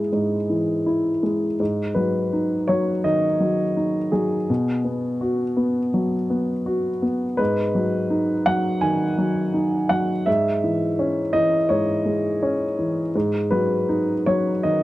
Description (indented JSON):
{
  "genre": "neoclassical minimalist piano",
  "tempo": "83 BPM",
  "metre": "4/4",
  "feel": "rubato",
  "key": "unclear",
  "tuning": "A4 = 440 Hz",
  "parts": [
    { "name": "warm upright piano", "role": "solo", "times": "0.0-14.8 s", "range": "G#2 to G#5", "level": "-19 LUFS", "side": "equal", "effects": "none" }
  ],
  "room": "light reverb",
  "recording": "dry, close 1970s-style studio recording",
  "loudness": "-19 LUFS",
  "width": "side -16 dB against mid",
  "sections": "0.0-14.8 A section",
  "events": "none",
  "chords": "0.0 E/G#; 1.6 G#m7; 4.5 B5; 7.4 G#m7; 10.3 E6/G#; 13.1 G#m7"
}